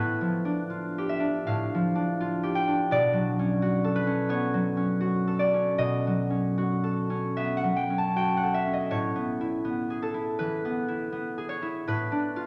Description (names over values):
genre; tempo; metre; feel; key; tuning
classical, solo harp piece; 74-86 BPM; 4/4; rubato; unclear; A4 = 438 Hz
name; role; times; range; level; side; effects
concert harp; solo; 0.0-12.5 s; A2 to A5; -27 LUFS; equal; none
room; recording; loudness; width
wet recital hall reverb, RT60 1.6 s; none; -27 LUFS; mono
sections
0.0-12.5 A section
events
none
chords
0.0 G9/A; 2.9 Bm9; 5.8 B9; 8.9 Amaj9; 11.9 G9/A (rootless)